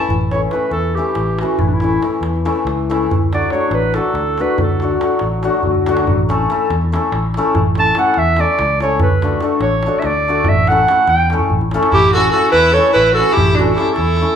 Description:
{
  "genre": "balkan folk, Balkan wedding band",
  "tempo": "285 BPM (eighths)",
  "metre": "7/8",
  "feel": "straight",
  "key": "A mixolydian",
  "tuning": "A4 = 440 Hz",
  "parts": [
    { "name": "clear clarinet", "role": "melody", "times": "0.0-5.0, 7.8-14.4 s", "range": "D4 to A5", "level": "-16 LUFS", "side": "right 2 dB", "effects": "none" },
    { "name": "clear violin", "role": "second line", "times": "0.0-0.1, 11.9-14.4 s", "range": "D4 to A4", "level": "-18 LUFS", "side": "equal", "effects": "none" },
    { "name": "hammered dulcimer", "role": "accompaniment", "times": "0.0-14.4 s", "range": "E3 to A4", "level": "-18 LUFS", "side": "left 4 dB", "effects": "none" },
    { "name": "fingered electric bass", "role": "bass", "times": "0.1-14.2 s", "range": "A1 to E2", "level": "-20 LUFS", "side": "equal", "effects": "none" },
    { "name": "darbuka", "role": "percussion", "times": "0.1-14.3 s", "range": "none", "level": "-21 LUFS", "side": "right 1 dB", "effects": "none" }
  ],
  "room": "wet large studio reverb, RT60 0.9 s",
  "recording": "band playing live in one room",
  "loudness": "-13 LUFS",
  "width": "side -8 dB against mid",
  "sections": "0.1-11.9 A section; 11.9-14.4 B section",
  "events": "speeding up 0.0-14.4; clarinet solo 0.1-11.9; drum fill 5.7-6.1, 11.4-11.9",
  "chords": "0.1 A; 3.1 D; 6.1 A; 9.0 D; 10.5 A"
}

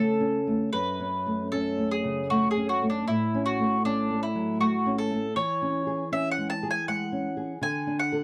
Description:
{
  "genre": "romantic duo for mandolin and classical guitar",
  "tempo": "78 BPM",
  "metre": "3/4",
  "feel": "rubato",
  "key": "unclear",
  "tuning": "A4 = 440 Hz",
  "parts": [
    { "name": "mandolin", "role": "melody", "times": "0.0-8.2 s", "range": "D4 to A5", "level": "-31 LUFS", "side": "equal", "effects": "none" },
    { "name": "nylon-string guitar", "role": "accompaniment", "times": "0.0-8.2 s", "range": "F#2 to A4", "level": "-29 LUFS", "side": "equal", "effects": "none" }
  ],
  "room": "little or no reverb",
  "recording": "dry, close 1970s-style studio recording",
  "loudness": "-27 LUFS",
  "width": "mono",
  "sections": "0.0-8.2 A section",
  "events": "none",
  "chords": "0.0 A/C#; 0.7 F#m; 3.1 F#m/A; 5.4 C#m/E; 7.6 D"
}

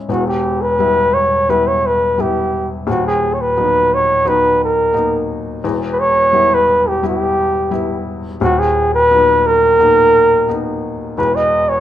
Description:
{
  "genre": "acoustic folk-pop ballad",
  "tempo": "87 BPM",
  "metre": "4/4",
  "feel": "straight",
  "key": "unclear",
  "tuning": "A4 = 435 Hz",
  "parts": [
    { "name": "felt-muted upright piano", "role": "accompaniment", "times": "0.0-11.8 s", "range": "D#1 to E4", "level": "-19 LUFS", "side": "left 3 dB", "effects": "none" },
    { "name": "breathy flugelhorn", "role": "melody", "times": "0.1-11.8 s", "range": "F#4 to D#5", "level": "-12 LUFS", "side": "equal", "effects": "none" }
  ],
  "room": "light reverb",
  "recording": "minimal, uncompressed stereo recording",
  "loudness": "-12 LUFS",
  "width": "side -12 dB against mid",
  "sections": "0.1-11.8 A section",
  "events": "none",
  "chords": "0.1 Em; 2.9 Bmaj7/D#; 5.6 Em; 8.4 Bmaj7/D#; 11.2 E5"
}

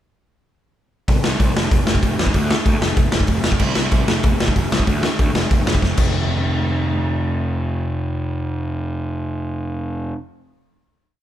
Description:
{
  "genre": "punk rock",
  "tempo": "190 BPM",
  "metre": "4/4",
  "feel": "straight",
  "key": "unclear",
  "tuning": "A4 = 440 Hz",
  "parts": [
    { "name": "fuzz picked electric bass", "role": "bass", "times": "1.1-10.1 s", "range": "F1 to E2", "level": "-21 LUFS", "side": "equal", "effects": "overdrive" },
    { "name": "raw garage drum kit", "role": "drums", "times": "1.1-6.1 s", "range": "crash cymbal, hi-hat, kick drum, snare drum", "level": "-17 LUFS", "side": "equal", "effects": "none" }
  ],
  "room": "light reverb",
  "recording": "band playing live in one room",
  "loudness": "-17 LUFS",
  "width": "side -12 dB against mid",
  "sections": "1.1-6.1 verse; 6.1-8.7 final hit",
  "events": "drum fill 5.8-6.1",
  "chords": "none"
}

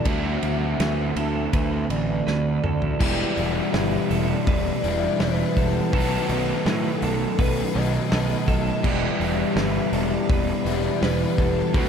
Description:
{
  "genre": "rock, shoegaze and dream pop",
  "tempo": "82 BPM",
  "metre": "4/4",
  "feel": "straight",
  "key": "E minor",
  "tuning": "A4 = 444 Hz",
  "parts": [
    { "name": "pure breathy sine lead", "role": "melody", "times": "0.0-11.9 s", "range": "A4 to E5", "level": "-30 LUFS", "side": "left 2 dB", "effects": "chorus, diffuse ambient delay" },
    { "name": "clean electric guitar", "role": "arpeggios", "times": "0.0-11.8 s", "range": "G4 to B4", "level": "-35 LUFS", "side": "right 7 dB", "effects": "ensemble chorus, diffuse ambient delay" },
    { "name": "crunchy overdriven guitar", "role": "riff", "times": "0.0-11.9 s", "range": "E2 to F#4", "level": "-28 LUFS", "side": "right 7 dB", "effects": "reverse reverb" },
    { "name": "overdriven semi-hollow guitar", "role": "riff", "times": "0.0-11.9 s", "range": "B2 to A4", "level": "-28 LUFS", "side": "left 8 dB", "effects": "ensemble chorus" },
    { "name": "fuzz picked electric bass", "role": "bass", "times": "0.1-11.9 s", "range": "E1 to A2", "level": "-27 LUFS", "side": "equal", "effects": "overdrive" },
    { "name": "loose indie drum kit", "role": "drums", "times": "0.1-11.9 s", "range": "crash cymbal, hi-hat, kick drum, ride cymbal, snare drum, toms", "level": "-27 LUFS", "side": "equal", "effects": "none" },
    { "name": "raw garage guitar", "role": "riff", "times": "3.0-11.9 s", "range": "B2 to A4", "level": "-30 LUFS", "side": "left 2 dB", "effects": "overdrive" }
  ],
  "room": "moderate lush hall reverb, RT60 3.0 s",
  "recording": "dreamy mix soaked in reverb",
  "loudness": "-20 LUFS",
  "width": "side -7 dB against mid",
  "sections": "0.0-3.0 A section; 3.0-11.9 B section",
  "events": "drum fill 2.3-3.0",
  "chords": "0.1 Dsus2; 3.0 Em7; 5.9 B7; 8.8 Em7"
}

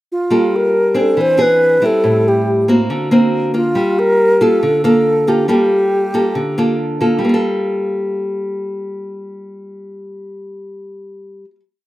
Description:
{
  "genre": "bossa nova",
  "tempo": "139 BPM",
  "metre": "4/4",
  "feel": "straight",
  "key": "G minor",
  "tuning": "A4 = 440 Hz",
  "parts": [
    { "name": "reedy alto flute", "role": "melody", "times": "0.1-6.8 s", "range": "F4 to C5", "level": "-14 LUFS", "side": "equal", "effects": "none" },
    { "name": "nylon-string guitar", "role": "accompaniment", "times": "0.3-11.6 s", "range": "A2 to A4", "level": "-16 LUFS", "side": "equal", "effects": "none" }
  ],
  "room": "little or no reverb",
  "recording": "recorded outdoors, with no room sound",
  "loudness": "-12 LUFS",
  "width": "side -16 dB against mid",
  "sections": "0.0-0.3 pickup bar; 0.3-7.2 A section; 7.2-10.7 final chord",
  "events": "none",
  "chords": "0.3 Gm9; 1.2 E7b13; 2.0 Am7; 2.9 D7alt; 3.8 Gm9"
}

